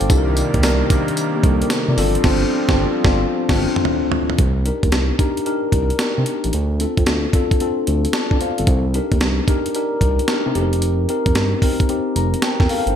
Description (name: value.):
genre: R&B, new jack swing.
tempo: 112 BPM.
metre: 4/4.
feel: swing 66% on 16ths.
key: C dorian.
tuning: A4 = 440 Hz.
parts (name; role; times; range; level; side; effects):
mellow tine electric piano; accompaniment; 0.0-13.0 s; Bb3 to Bb5; -20 LUFS; left 3 dB; wide subtle chorus.
warm analog pad; sustained chords; 0.0-4.4 s; C3 to D5; -25 LUFS; right 2 dB; chorus.
smooth synth bass; bass; 0.0-12.9 s; F1 to D3; -20 LUFS; right 1 dB; none.
breakbeat sampler-style drum kit; drums; 0.0-13.0 s; crash cymbal, hi-hat, kick drum, snare drum, tambourine, toms; -19 LUFS; right 1 dB; gated reverb.
room: light reverb.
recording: bright 1980s-style digital production.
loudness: -16 LUFS.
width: side -9 dB against mid.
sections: 0.0-4.4 A section; 4.4-13.0 B section.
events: drum fill 2.2-4.4; band accent 2.2-4.4; tine electric piano fill 7.9-8.7, 11.9-13.0.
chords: 0.1 Cm9; 2.0 G7sus4; 4.4 Cm9; 6.5 Dm7; 8.7 Cm9; 10.5 F7sus4.